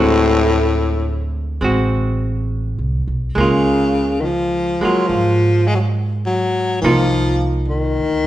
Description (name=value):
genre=jazz ballad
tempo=69 BPM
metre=4/4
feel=swing 68% on 8ths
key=unclear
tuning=A4 = 440 Hz
part: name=growling baritone saxophone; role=melody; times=0.0-8.3 s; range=A2 to Ab3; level=-17 LUFS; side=left 2 dB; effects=none
part: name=archtop guitar, miked and amplified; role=accompaniment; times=0.0-8.3 s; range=D3 to F#4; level=-21 LUFS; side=right 2 dB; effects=none
part: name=upright bass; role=bass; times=0.0-8.3 s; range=A1 to Ab2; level=-20 LUFS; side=right 1 dB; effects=none
room=moderate recital hall reverb, RT60 1.3 s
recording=recorded in a church or concert hall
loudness=-15 LUFS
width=side -13 dB against mid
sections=0.0-8.3 A section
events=none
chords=0.0 D7#11; 3.4 Db6; 6.8 Cm11